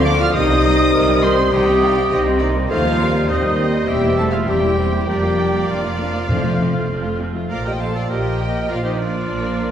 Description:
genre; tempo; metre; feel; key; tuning
quick classical-period movement for symphony orchestra; 101 BPM; 4/4; straight; Bb major; A4 = 438 Hz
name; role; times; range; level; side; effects
rich chamber violin section; melody; 0.0-9.7 s; D5 to F6; -26 LUFS; left 2 dB; none
bright oboe; second line; 0.0-9.7 s; Eb4 to F5; -26 LUFS; right 2 dB; none
mellow hollow flute section; second line; 0.0-9.7 s; Bb4 to F6; -28 LUFS; right 1 dB; none
rich studio violin section; second line; 0.0-9.7 s; Bb4 to F5; -30 LUFS; left 2 dB; none
warm clarinet; second line; 0.0-9.7 s; F4 to E5; -28 LUFS; equal; none
dark bassoon; accompaniment; 0.0-9.7 s; F3 to C4; -24 LUFS; left 1 dB; none
rich chamber viola section; accompaniment; 0.0-9.7 s; Eb3 to A4; -25 LUFS; right 1 dB; none
mellow French horn section; sustained chords; 0.0-9.7 s; Eb3 to F4; -22 LUFS; left 2 dB; none
clear symphonic cello section; bass; 0.0-9.7 s; Eb2 to D3; -25 LUFS; right 2 dB; none
dark chamber double bass section; bass; 0.0-9.7 s; E1 to Eb2; -23 LUFS; right 2 dB; none
timpani; percussion; 6.3-7.2 s; F2; -24 LUFS; left 1 dB; none
room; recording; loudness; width
wet scoring stage reverb, RT60 1.5 s; heard from further back in the room; -15 LUFS; side -9 dB against mid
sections
0.0-7.5 A section; 7.5-9.7 B section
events
none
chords
0.3 Cm; 2.7 Cm/Eb; 3.9 C7/E; 5.1 Bb/F; 6.3 F; 7.5 Bb

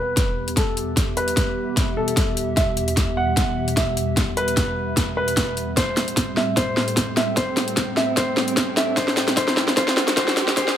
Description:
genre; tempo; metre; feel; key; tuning
heavy wobble dubstep; 150 BPM; 4/4; swing 54% on 16ths, half-time; E minor; A4 = 438 Hz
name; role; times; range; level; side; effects
warm concert grand piano; melody; 0.0-10.8 s; A4 to F#5; -25 LUFS; equal; low-pass filter, dub echo
lush unison pad; sustained chords; 0.0-10.8 s; E2 to C4; -29 LUFS; right 1 dB; chorus, sidechain pumping
warbly tape-like pad; texture; 0.0-10.8 s; B3 to G5; -30 LUFS; equal; chorus, built-in reverb, sidechain pumping
dubstep drum kit; drums; 0.2-10.8 s; hi-hat, snare drum; -22 LUFS; equal; none
electronic kick drum; drums; 0.2-10.7 s; none; -24 LUFS; equal; none
riser; sound effects; 7.8-10.8 s; none; -30 LUFS; right 1 dB; none
room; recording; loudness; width
moderate lush hall reverb, RT60 1.7 s; high-pass filter; -19 LUFS; side -10 dB against mid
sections
0.0-10.8 A section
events
build-up 0.0-10.8; drum fill 0.0-10.8; filter sweep on analog synth pad 0.0-10.8; filter sweep on grand piano 0.0-10.8; filter sweep 0.0-10.8; riser 7.8-10.8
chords
0.0 Em; 5.8 Am7

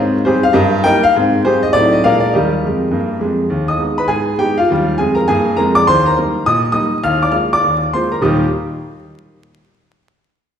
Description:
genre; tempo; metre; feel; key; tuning
jazz, stride piano; 204 BPM; 4/4; swing 64% on 8ths; Eb major; A4 = 438 Hz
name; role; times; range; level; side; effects
clear grand piano; solo; 0.0-8.4 s; Eb2 to F6; -12 LUFS; equal; none
room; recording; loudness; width
wet recital hall reverb, RT60 1.5 s; recorded in a church or concert hall, vinyl crackle; -12 LUFS; side -8 dB against mid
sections
0.0-3.5 A section; 3.5-8.2 B section; 8.2-9.4 C section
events
none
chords
0.0 Abmaj7; 0.6 Eb/G; 1.1 Abmaj7; 1.7 Adim7; 2.0 Bb7; 2.3 Eb; 3.5 Abm/Eb; 4.7 Bb7/Eb; 5.9 Eb; 7.0 Bb7/Eb; 8.2 Eb

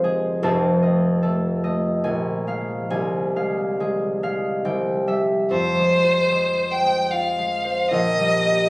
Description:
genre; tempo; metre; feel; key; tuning
classical, romantic duo for violin and harp; 67-76 BPM; 3/4; rubato; F minor; A4 = 440 Hz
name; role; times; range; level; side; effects
concert harp; accompaniment; 0.0-8.7 s; F1 to A5; -20 LUFS; equal; none
clear violin; melody; 5.5-8.7 s; C5 to G5; -18 LUFS; equal; none
room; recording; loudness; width
wet recital hall reverb, RT60 1.5 s; recorded on a phone in the room, club reverb, compression; -19 LUFS; side -24 dB against mid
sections
0.0-5.5 A section; 5.5-8.7 B section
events
none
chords
0.4 F7; 2.1 Bb5; 2.9 Fm/C; 4.7 C; 5.5 Fm; 7.9 Gm/Bb

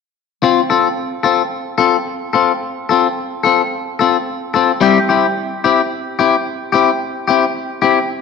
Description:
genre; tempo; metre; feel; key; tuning
highlife; 110 BPM; 4/4; swing 54% on 16ths; F major; A4 = 440 Hz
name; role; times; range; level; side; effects
clean electric guitar; accompaniment; 0.4-8.0 s; G3 to A4; -13 LUFS; left 6 dB; wide subtle chorus
room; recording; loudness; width
wet echo chamber reverb, RT60 2.0 s; none; -13 LUFS; side -5 dB against mid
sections
0.4-8.2 A section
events
none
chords
0.4 F; 4.8 C

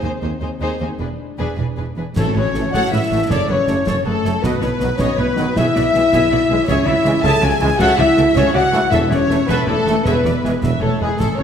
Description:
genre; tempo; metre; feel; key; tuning
cinematic, heroic adventure film score; 106 BPM (dotted quarters); 12/8; straight; A major; A4 = 440 Hz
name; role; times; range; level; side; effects
warm studio violin section; melody; 0.0-11.4 s; G#4 to A5; -25 LUFS; left 3 dB; none
rich symphonic violin section; second line; 0.0-11.4 s; Ab4 to A5; -27 LUFS; left 3 dB; none
rich symphonic viola section; accompaniment; 0.0-11.4 s; D4 to E5; -27 LUFS; equal; none
mellow French horn section; sustained chords; 0.0-11.4 s; Ab3 to A4; -20 LUFS; left 2 dB; none
rich symphonic cello section; bass; 0.0-11.4 s; Eb2 to C#3; -24 LUFS; right 1 dB; none
rich symphonic double bass section; bass; 0.0-11.4 s; E1 to Eb2; -25 LUFS; right 3 dB; none
dark clarinet; second line; 2.2-11.4 s; G#4 to A5; -27 LUFS; left 2 dB; none
mellow hollow concert flute; second line; 2.2-11.4 s; G#4 to A5; -27 LUFS; left 2 dB; none
clear trumpet section; stabs; 2.2-11.4 s; G#4 to A5; -24 LUFS; equal; none
mellow tuba; bass; 2.2-11.4 s; E1 to C#2; -26 LUFS; right 4 dB; none
concert snare drum, clash cymbals and concert bass drum; drums; 2.2-11.4 s; none; -26 LUFS; equal; none
timpani; percussion; 2.2-2.7, 8.9-9.4 s; E2 to A2; -25 LUFS; left 1 dB; none
bright trombone section; sustained chords; 2.5-11.1 s; C#3 to A3; -28 LUFS; right 3 dB; none
room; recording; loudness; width
wet scoring stage reverb, RT60 2.0 s; none; -14 LUFS; side -8 dB against mid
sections
0.0-2.2 A section; 2.2-11.4 B section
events
none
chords
0.0 Ab/Eb; 1.0 E7; 2.2 A; 3.3 F#m; 4.4 B; 5.6 E/B; 6.7 C#m; 8.9 A/E; 10.1 E

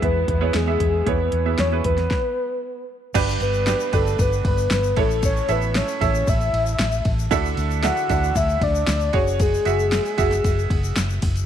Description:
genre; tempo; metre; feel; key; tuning
piano-driven pop; 115 BPM; 4/4; straight; A major; A4 = 441 Hz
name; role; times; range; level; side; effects
soft octave-layered synth lead; melody; 0.0-11.0 s; G#4 to F#5; -23 LUFS; left 2 dB; chorus
clear upright piano; accompaniment; 0.0-11.5 s; G2 to E5; -26 LUFS; right 12 dB; none
dark studio string section; sustained chords; 0.0-2.1 s; G#3 to E4; -38 LUFS; left 2 dB; none
vintage muted fingered electric bass; bass; 0.0-11.4 s; F#1 to E2; -23 LUFS; left 1 dB; none
deep house drum kit; drums; 0.0-11.5 s; crash cymbal, hi-hat, kick drum, ride cymbal, snare drum; -25 LUFS; left 1 dB; none
tube shaker; percussion; 3.1-11.5 s; none; -38 LUFS; left 19 dB; none
room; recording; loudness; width
light reverb; 1960s-style stereo with parts hard left and right; -18 LUFS; side -10 dB against mid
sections
0.0-3.1 A section; 3.1-11.5 B section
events
stop 2.1-3.1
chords
0.0 E; 3.1 G; 5.0 A; 7.3 Dadd9; 9.1 F#sus2

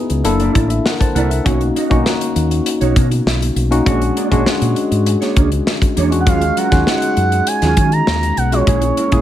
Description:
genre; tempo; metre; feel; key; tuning
polished 1980s jazz-funk pop; 100 BPM; 4/4; straight; Eb minor; A4 = 441 Hz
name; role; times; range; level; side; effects
expressive synth lead; melody; 0.0-0.1, 6.2-9.2 s; Cb5 to Bb5; -18 LUFS; right 4 dB; chorus
tine electric piano; accompaniment; 0.0-9.2 s; Ab3 to A5; -18 LUFS; left 3 dB; overdrive, analog chorus
mellow electric guitar; riff; 0.1-9.2 s; Gb3 to D#5; -23 LUFS; right 7 dB; ensemble chorus
fingered electric bass; bass; 0.1-9.2 s; Gb1 to Eb3; -17 LUFS; equal; none
modern studio drum kit; drums; 0.1-9.2 s; hi-hat, kick drum, snare drum; -18 LUFS; equal; none
room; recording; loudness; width
small room ambience; none; -13 LUFS; side -12 dB against mid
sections
0.0-9.2 A section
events
none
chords
0.2 Gb7alt; 1.5 Bmaj9; 3.9 Bb7alt; 6.3 Ebm11; 8.7 Bbm7b5

